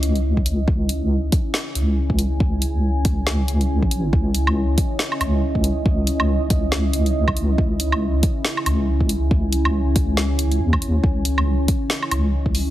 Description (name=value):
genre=deep dubstep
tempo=139 BPM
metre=4/4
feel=swing 59% on 16ths, half-time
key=C# minor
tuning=A4 = 440 Hz
part: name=deep dark ambient pad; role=sustained chords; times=0.0-12.7 s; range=C#4 to G#5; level=-26 LUFS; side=equal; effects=chorus, built-in reverb
part: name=deep soft wobble bass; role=bass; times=0.0-12.7 s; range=C#2 to D#2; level=-20 LUFS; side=equal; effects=chorus
part: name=deep house drum kit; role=drums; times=0.0-12.6 s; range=hi-hat, snare drum, woodblock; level=-24 LUFS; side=equal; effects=small room ambience
part: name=electronic kick drum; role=drums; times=0.4-12.5 s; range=none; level=-20 LUFS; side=equal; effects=small room ambience
room=little or no reverb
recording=heavily compressed radio sound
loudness=-18 LUFS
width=side -14 dB against mid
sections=0.0-12.7 A section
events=none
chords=0.0 C#madd9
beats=0.24 | 0.68 1.11 1.54 1.97 | 2.40 2.83 3.27 3.70 | 4.13 4.56 4.99 5.42 | 5.86 6.29 6.72 7.15 | 7.58 8.01 8.45 8.88 | 9.31 9.74 10.17 10.60 | 11.04 11.47 11.90 12.33